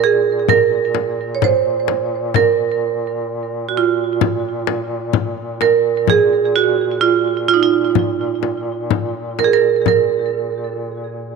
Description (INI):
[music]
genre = caucasian folk, Caucasian lament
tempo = 64 BPM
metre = 4/4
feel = rubato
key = unclear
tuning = A4 = 440 Hz
[part]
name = marimba with hard mallets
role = melody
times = 0.0-11.4 s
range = Eb4 to Db5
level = -16 LUFS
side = right 8 dB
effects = tape echo
[part]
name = mellow duduk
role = drone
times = 0.0-11.4 s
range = Bb2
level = -26 LUFS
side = left 2 dB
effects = stereo widening
[part]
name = frame drum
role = percussion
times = 0.5-10.1 s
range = none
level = -19 LUFS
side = left 10 dB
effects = none
[sound]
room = moderate plate reverb, RT60 2.4 s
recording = 1960s-style stereo with parts hard left and right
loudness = -15 LUFS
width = side -4 dB against mid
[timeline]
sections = 0.0-11.4 A section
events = none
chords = none